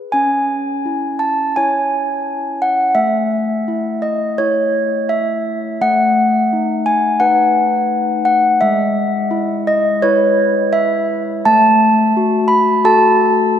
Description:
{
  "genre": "classical, tune for handbells",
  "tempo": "85 BPM",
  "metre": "4/4",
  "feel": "straight",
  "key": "unclear",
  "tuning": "A4 = 440 Hz",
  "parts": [
    { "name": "handbells", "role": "solo", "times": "0.0-13.6 s", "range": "G#3 to B5", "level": "-13 LUFS", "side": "equal", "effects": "none" }
  ],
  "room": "wet cathedral reverb, RT60 4.4 s",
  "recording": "minimal, uncompressed stereo recording",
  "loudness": "-13 LUFS",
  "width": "side -9 dB against mid",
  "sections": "0.1-13.6 A section",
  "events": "none",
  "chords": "0.1 C#m; 3.0 A; 5.8 B7/A; 8.6 E/G#; 11.4 F#m/A"
}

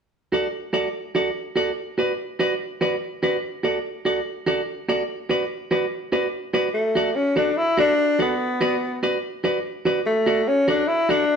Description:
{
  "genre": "ska",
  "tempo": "145 BPM",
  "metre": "4/4",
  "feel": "swing 55% on 8ths",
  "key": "D major",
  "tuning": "A4 = 444 Hz",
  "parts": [
    { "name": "clean electric guitar", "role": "accompaniment", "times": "0.3-11.2 s", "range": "F#4 to D5", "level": "-22 LUFS", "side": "right 2 dB", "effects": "none" },
    { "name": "breathy tenor saxophone", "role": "melody", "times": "6.7-11.4 s", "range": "A3 to E4", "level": "-20 LUFS", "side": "left 2 dB", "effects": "none" }
  ],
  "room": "wet stone room reverb, RT60 1.1 s",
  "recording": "band playing live in one room",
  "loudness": "-20 LUFS",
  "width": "side -6 dB against mid",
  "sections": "0.1-6.7 A section; 6.7-11.4 B section",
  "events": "none",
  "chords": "0.1 D; 1.8 Bm; 3.4 D; 5.1 Bm; 6.7 D; 8.4 Bm; 10.0 D"
}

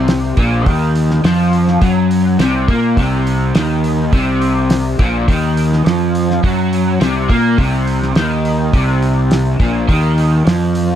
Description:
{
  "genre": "psychedelic rock",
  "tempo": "104 BPM",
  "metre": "4/4",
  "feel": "straight",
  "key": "C minor",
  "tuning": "A4 = 440 Hz",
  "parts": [
    { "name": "crunchy overdriven guitar", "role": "riff", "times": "0.0-11.0 s", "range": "Bb2 to Bb3", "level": "-15 LUFS", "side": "equal", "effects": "flanger" },
    { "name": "fuzz fingered electric bass", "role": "bass", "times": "0.0-11.0 s", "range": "Bb1 to Bb2", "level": "-17 LUFS", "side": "equal", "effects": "overdrive" },
    { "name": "cloth-damped thuddy drum kit", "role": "drums", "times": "0.1-10.9 s", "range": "hi-hat, kick drum, snare drum", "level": "-16 LUFS", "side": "equal", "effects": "none" }
  ],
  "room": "little or no reverb",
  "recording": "none",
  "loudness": "-12 LUFS",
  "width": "side -10 dB against mid",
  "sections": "0.0-11.0 A section",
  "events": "none",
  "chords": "0.0 Cm"
}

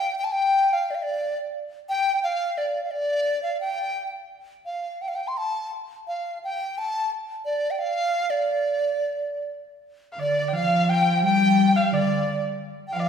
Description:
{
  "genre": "chinese traditional, Chinese chamber ensemble",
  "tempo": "87 BPM",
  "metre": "2/4",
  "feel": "rubato",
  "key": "D yu mode",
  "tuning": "A4 = 438 Hz",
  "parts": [
    { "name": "mellow large dizi", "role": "melody", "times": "0.0-13.1 s", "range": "D5 to C6", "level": "-24 LUFS", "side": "equal", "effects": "none" },
    { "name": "rich erhu", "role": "second line", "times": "10.1-13.1 s", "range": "D5 to G5", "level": "-27 LUFS", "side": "right 1 dB", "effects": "none" },
    { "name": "dark cello", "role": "second line", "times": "10.2-13.1 s", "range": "D3 to G3", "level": "-22 LUFS", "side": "left 2 dB", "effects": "none" }
  ],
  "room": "wet recital hall reverb, RT60 1.8 s",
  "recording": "heard from further back in the room",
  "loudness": "-22 LUFS",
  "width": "side -7 dB against mid",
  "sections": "0.0-9.8 A section; 9.8-13.1 B section",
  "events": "none",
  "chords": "none"
}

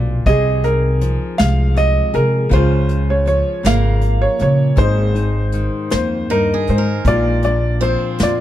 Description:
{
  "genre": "acoustic folk-pop ballad",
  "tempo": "53 BPM (dotted quarters)",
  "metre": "6/8",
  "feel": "straight",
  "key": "F minor",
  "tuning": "A4 = 440 Hz",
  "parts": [
    { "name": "clear concert grand piano", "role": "melody", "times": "0.0-8.4 s", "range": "Eb4 to F5", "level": "-19 LUFS", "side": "equal", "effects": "none" },
    { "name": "nylon-string guitar", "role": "accompaniment", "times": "0.0-8.4 s", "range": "F2 to Ab4", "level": "-22 LUFS", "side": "left 3 dB", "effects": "none" },
    { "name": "picked swing-style acoustic guitar", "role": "arpeggios", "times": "0.0-8.4 s", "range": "Bb3 to G5", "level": "-26 LUFS", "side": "right 7 dB", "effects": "none" },
    { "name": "upright bass", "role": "bass", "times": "0.0-8.4 s", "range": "Ab1 to Db3", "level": "-17 LUFS", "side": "equal", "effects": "none" },
    { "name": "soft brush drum kit", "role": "drums", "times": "0.3-8.4 s", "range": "hi-hat, kick drum, snare drum", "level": "-19 LUFS", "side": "equal", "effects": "none" }
  ],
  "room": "little or no reverb",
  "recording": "dark, warm production",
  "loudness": "-14 LUFS",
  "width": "side -12 dB against mid",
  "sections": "0.0-8.4 A section",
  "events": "none",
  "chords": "0.3 Fm7/C; 2.5 Db6; 4.8 Ab; 7.1 Bb"
}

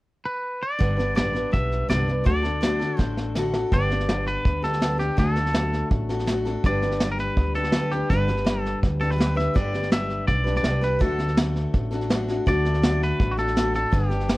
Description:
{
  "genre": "honky-tonk and classic country",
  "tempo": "165 BPM",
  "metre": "4/4",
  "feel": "straight",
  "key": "G major",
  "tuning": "A4 = 443 Hz",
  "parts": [
    { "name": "twangy electric guitar", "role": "melody", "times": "0.3-14.4 s", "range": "F#4 to E5", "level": "-27 LUFS", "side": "equal", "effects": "none" },
    { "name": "picked steel-string acoustic guitar", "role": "accompaniment", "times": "0.8-14.4 s", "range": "G2 to B4", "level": "-26 LUFS", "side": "left 1 dB", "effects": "none" },
    { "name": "upright bass", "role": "bass", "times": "0.8-14.4 s", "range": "G1 to D2", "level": "-26 LUFS", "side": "equal", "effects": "none" },
    { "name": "vintage brush drum kit", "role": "drums", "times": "0.8-14.4 s", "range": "hi-hat, kick drum, snare drum", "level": "-25 LUFS", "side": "equal", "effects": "none" }
  ],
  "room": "little or no reverb",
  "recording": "worn, warbling old tape, cassette tape, warbly pitch drift",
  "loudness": "-21 LUFS",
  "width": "side -19 dB against mid",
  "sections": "0.8-3.7 A section; 3.7-14.4 B section",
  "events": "drum fill 3.0-3.7",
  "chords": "0.0 N.C.; 0.8 G; 2.3 D; 3.7 G; 5.2 D; 6.6 G; 11.0 D"
}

